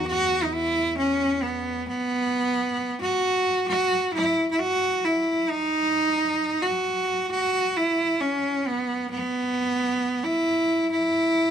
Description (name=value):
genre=folk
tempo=133 BPM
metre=4/4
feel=straight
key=unclear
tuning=A4 = 440 Hz
part: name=clear cello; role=melody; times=0.0-11.5 s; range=B3 to F#4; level=-22 LUFS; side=right 1 dB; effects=none
part: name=fingerpicked steel-string acoustic guitar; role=accompaniment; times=0.0-1.9 s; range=E2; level=-36 LUFS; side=left 4 dB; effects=none
room=light reverb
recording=dark, warm production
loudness=-22 LUFS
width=side -8 dB against mid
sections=0.1-11.5 A section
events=none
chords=none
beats=| 0.05 0.51 0.96 1.42 | 1.87 2.33 2.78 3.23 | 3.69 4.14 4.59 5.04 | 5.50 5.95 6.40 6.85 | 7.30 7.75 8.20 8.65 | 9.10 9.55 10.00 10.45 | 10.90 11.35